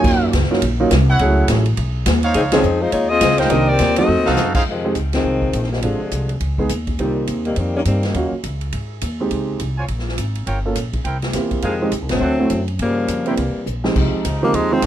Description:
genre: jazz, big band swing.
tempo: 207 BPM.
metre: 4/4.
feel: swing 60% on 8ths.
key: F minor from 4.7 s.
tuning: A4 = 443 Hz.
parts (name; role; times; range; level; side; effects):
warm baby grand piano; accompaniment; 0.0-14.8 s; F2 to A4; -20 LUFS; right 3 dB; none.
clear trumpet section; stabs; 0.0-4.6, 9.8-13.3 s; D4 to Ab5; -22 LUFS; right 2 dB; none.
upright bass; bass; 0.0-14.9 s; G1 to Ab2; -21 LUFS; equal; none.
swinging big-band drum kit; drums; 0.0-14.9 s; crash cymbal, hi-hat, kick drum, ride cymbal, snare drum; -24 LUFS; equal; none.
dark saxophone section; melody; 2.4-8.3, 11.6-13.7 s; Bb2 to Eb5; -19 LUFS; left 2 dB; none.
muted trombone section; sustained chords; 13.9-14.9 s; C3 to Eb4; -27 LUFS; equal; none.
bright tenor saxophone; melody; 14.4-14.9 s; Ab3 to C4; -18 LUFS; equal; none.
room: small room ambience.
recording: none.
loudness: -16 LUFS.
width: side -11 dB against mid.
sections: 0.0-4.7 A section; 4.7-14.0 B section.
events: band accent 2.5, 5.1, 12.1; drum fill 4.1, 13.7.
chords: 0.0 Ebm9; 1.2 Gbm7; 1.8 Badd9; 2.4 Dbmaj9; 3.5 Cm7; 4.1 F7b9; 4.7 Fm7; 5.8 Dm7b5; 6.4 Dbsus2; 7.0 Cm7; 8.1 Ebm7; 8.7 Ab; 9.3 Dbmaj7(no3); 10.5 Gm7b5; 11.1 C7; 11.6 Fm7; 12.2 D7; 12.8 Gm7b5; 13.4 C7; 14.0 Fm7.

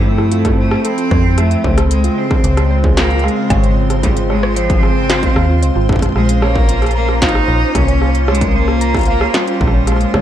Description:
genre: IDM.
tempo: 113 BPM.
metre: 4/4.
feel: straight.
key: unclear.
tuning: A4 = 440 Hz.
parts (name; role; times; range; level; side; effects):
bright cello; melody; 0.0-10.2 s; F3 to Eb4; -18 LUFS; equal; ping-pong delay.
hollow soft pad; sustained chords; 0.0-10.2 s; Db3 to A4; -21 LUFS; right 1 dB; chorus, vintage 12-bit sampler grit.
metallic FM bass; bass; 0.0-10.2 s; Ab1 to G2; -16 LUFS; equal; none.
flickering grainy texture; texture; 0.2-10.2 s; C5; -28 LUFS; equal; built-in reverb.
harp-like synth pluck; arpeggios; 0.2-10.2 s; E4 to Bb5; -23 LUFS; right 2 dB; chorus, vintage 12-bit sampler grit, digital delay.
industrial drum kit; drums; 0.2-10.2 s; hi-hat, rim click, snare drum; -20 LUFS; equal; none.
electronic kick drum; drums; 0.4-10.2 s; none; -16 LUFS; equal; distortion.
room: light reverb, digital ambience.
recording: dark, warm production.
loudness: -11 LUFS.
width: side -11 dB against mid.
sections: 0.0-10.2 A section.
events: none.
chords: 0.0 Fmaj7; 1.9 Dbmaj7; 6.2 Bbm.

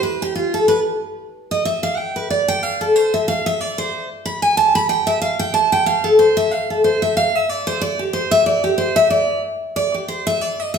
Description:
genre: bluegrass.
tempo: 185 BPM.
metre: 4/4.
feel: swing 55% on 8ths.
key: D dorian.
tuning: A4 = 435 Hz.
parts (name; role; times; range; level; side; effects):
picked steel-string acoustic guitar; solo; 0.0-10.8 s; F4 to B5; -16 LUFS; equal; none.
room: wet large studio reverb, RT60 1.2 s.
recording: band playing live in one room.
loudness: -16 LUFS.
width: side -6 dB against mid.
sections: 0.0-10.8 A section.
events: steel-string acoustic guitar solo 0.0-10.8.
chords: none.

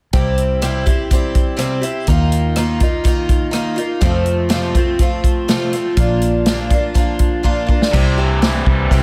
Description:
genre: folk rock and heartland rock.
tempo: 123 BPM.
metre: 4/4.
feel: straight.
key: unclear.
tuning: A4 = 439 Hz.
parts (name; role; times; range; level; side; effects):
picked twelve-string acoustic guitar; accompaniment; 0.1-9.0 s; F2 to G4; -21 LUFS; equal; none.
fingered electric bass; bass; 0.1-9.0 s; Bb1 to F2; -21 LUFS; equal; none.
natural country drum kit; drums; 0.1-9.0 s; crash cymbal, hi-hat, kick drum, rim click, snare drum; -19 LUFS; equal; none.
raw garage guitar; riff; 7.9-9.0 s; C3 to G3; -23 LUFS; equal; overdrive.
room: light reverb, small room ambience.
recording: none.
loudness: -16 LUFS.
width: mono.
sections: 0.1-7.9 A section; 7.9-9.0 B section.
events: drum fill 7.4-7.9.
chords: 0.1 C; 2.1 Ebsus2; 4.0 F; 6.0 Bb; 7.9 C.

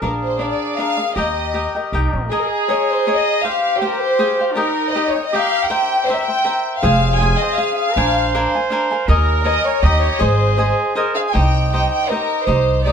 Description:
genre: mexican folk, mariachi.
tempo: 159 BPM.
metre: 3/4.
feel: straight.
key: Ab major.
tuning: A4 = 437 Hz.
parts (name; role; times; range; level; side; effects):
warm studio violin section; melody; 0.0-12.9 s; G4 to Ab5; -18 LUFS; left 1 dB; plate reverb.
clear trumpet; second line; 0.0-11.3 s; D4 to C5; -23 LUFS; right 1 dB; none.
cavaquinho; accompaniment; 0.0-12.9 s; D4 to Bb5; -22 LUFS; left 1 dB; none.
upright bass; bass; 0.0-2.3, 6.8-12.9 s; F1 to Eb2; -18 LUFS; right 1 dB; none.
room: wet small room ambience, RT60 0.5 s.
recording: heard from further back in the room.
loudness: -15 LUFS.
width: side -7 dB against mid.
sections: 0.0-2.3 A section; 2.3-11.3 B section; 11.3-12.9 C section.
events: none.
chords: 0.0 Bb; 1.2 Eb; 2.3 Absus2; 3.4 Fmadd9; 4.6 Eb; 5.7 C7; 6.8 Fm; 8.0 Bb7; 9.1 Eb7sus4; 9.8 Eb7; 10.2 Ab; 11.3 Cm.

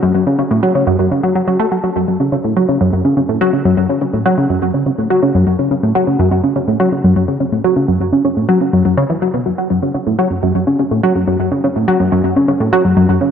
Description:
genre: ambient.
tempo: 124 BPM.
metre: 4/4.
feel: straight.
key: F# minor.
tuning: A4 = 442 Hz.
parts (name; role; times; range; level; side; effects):
tight sequenced synth; solo; 0.0-13.3 s; F#2 to A3; -12 LUFS; equal; chorus, analog delay.
room: wet spring reverb, RT60 2.6 s.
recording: echo-heavy mix.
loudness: -12 LUFS.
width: side -8 dB against mid.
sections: 0.0-2.0 A section; 2.0-13.3 B section.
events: none.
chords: none.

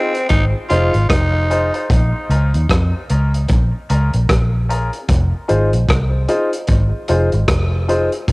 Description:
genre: dub reggae.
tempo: 75 BPM.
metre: 4/4.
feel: swing 60% on 16ths.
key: F minor.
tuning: A4 = 440 Hz.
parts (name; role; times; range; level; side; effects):
growling tenor saxophone; melody; 0.0-1.9 s; C4 to F4; -22 LUFS; equal; cassette tape, dub echo.
warm grand piano; stabs; 0.0-8.1 s; Db4 to C5; -21 LUFS; left 1 dB; high-pass filter, cassette tape, dub echo.
crunchy breakbeat drum kit; drums; 0.1-8.3 s; hi-hat, kick drum, rim click; -18 LUFS; equal; cassette tape.
vintage muted fingered electric bass; bass; 0.3-8.3 s; F1 to F2; -16 LUFS; equal; none.
room: light reverb, small room ambience.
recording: home recording on cassette.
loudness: -14 LUFS.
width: side -25 dB against mid.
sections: 0.0-8.3 A section.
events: filter sweep on grand piano 0.0-5.1.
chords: 0.0 Fm7; 1.9 Bbm7; 5.1 Fm7.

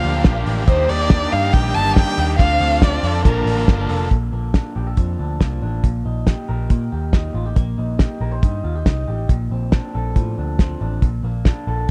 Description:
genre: jangly indie pop.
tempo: 139 BPM.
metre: 4/4.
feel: straight.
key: Bb major.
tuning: A4 = 441 Hz.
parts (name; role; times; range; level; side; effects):
warm violin; melody; 0.0-3.9 s; Bb4 to A5; -23 LUFS; equal; none.
combo organ; accompaniment; 0.0-4.1 s; Bb3 to A5; -29 LUFS; equal; none.
crunchy overdriven guitar; accompaniment; 0.0-4.1 s; Bb2 to A4; -31 LUFS; equal; none.
electric guitar through a small old amp; arpeggios; 0.0-11.9 s; Bb2 to C5; -30 LUFS; equal; analog delay.
vintage muted picked electric bass; bass; 0.0-11.9 s; F1 to Bb2; -24 LUFS; equal; none.
cloth-damped thuddy drum kit; drums; 0.0-11.9 s; hi-hat, kick drum, ride cymbal, snare drum; -17 LUFS; equal; vintage 12-bit sampler grit.
room: studio ambience.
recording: cassette tape.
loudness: -19 LUFS.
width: mono.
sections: 0.0-4.1 A section; 4.1-11.9 B section.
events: none.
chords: 0.0 Gm7; 0.7 Ebmaj7; 2.4 Dm7; 3.2 Bbmaj7; 5.8 Eb/Bb; 7.6 Cm7/Bb; 9.3 Dm7/Bb.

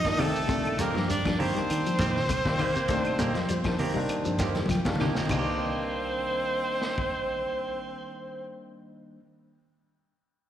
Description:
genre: afrobeat.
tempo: 100 BPM.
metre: 4/4.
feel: swing 54% on 16ths.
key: C dorian.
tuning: A4 = 441 Hz.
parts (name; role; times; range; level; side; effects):
bright trumpet; melody; 0.0-8.5 s; A4 to Eb5; -32 LUFS; left 1 dB; slapback echo.
edgy alto saxophone; second line; 0.0-8.5 s; A3 to Eb4; -33 LUFS; right 4 dB; slapback echo.
clean electric guitar; arpeggios; 0.0-5.5 s; C3 to A3; -34 LUFS; left 6 dB; none.
fingered electric bass; bass; 0.0-9.2 s; C2 to F3; -32 LUFS; equal; none.
vintage drum kit; drums; 0.0-7.1 s; crash cymbal, hi-hat, kick drum, snare drum; -34 LUFS; equal; none.
barky tine electric piano; accompaniment; 0.1-9.2 s; Bb2 to G5; -35 LUFS; left 3 dB; slapback echo.
semi-hollow electric guitar; stabs; 0.2-9.3 s; Eb3 to G4; -34 LUFS; right 4 dB; phaser, slapback echo.
claves; percussion; 0.2-5.5 s; none; -42 LUFS; left 2 dB; none.
congas; percussion; 0.2-5.5 s; none; -33 LUFS; right 1 dB; none.
shekere; percussion; 0.2-5.5 s; none; -38 LUFS; equal; none.
room: light reverb, studio reverb.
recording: live gig heard through the venue's PA, recital hall reverb.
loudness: -25 LUFS.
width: side -10 dB against mid.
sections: 0.0-5.3 A section; 5.3-7.7 B section.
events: tine electric piano fill 4.4-5.3; drum fill 4.6-5.3.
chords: 0.0 Cm7.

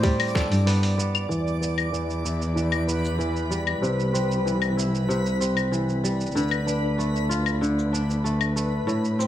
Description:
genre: folktronica.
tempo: 95 BPM.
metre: 4/4.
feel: straight.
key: unclear.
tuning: A4 = 439 Hz.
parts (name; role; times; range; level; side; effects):
mellow flugelhorn; melody; 0.0-0.6 s; C5; -34 LUFS; right 2 dB; plate reverb, ping-pong delay.
kora; arpeggios; 0.0-9.3 s; A2 to A4; -27 LUFS; equal; low-pass filter, plate reverb, ping-pong delay.
electronic kick drum; drums; 0.0-0.5 s; none; -24 LUFS; equal; studio reverb.
lo-fi sampler-style drum kit; drums; 0.0-9.3 s; cabasa, claves, hi-hat, snare drum; -29 LUFS; left 4 dB; studio reverb.
backwards swelling texture; texture; 0.0-9.3 s; B4 to D6; -32 LUFS; equal; built-in reverb.
dark cello; bass; 0.5-9.3 s; C2 to A2; -25 LUFS; equal; none.
room: light reverb.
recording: none.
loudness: -22 LUFS.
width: side -12 dB against mid.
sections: 0.0-1.3 A section; 1.3-9.3 B section.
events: kick drops out 0.7-1.3; filter sweep on kora 1.3-9.3.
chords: 0.0 Gadd9; 1.3 Em; 3.8 C; 6.4 Dm.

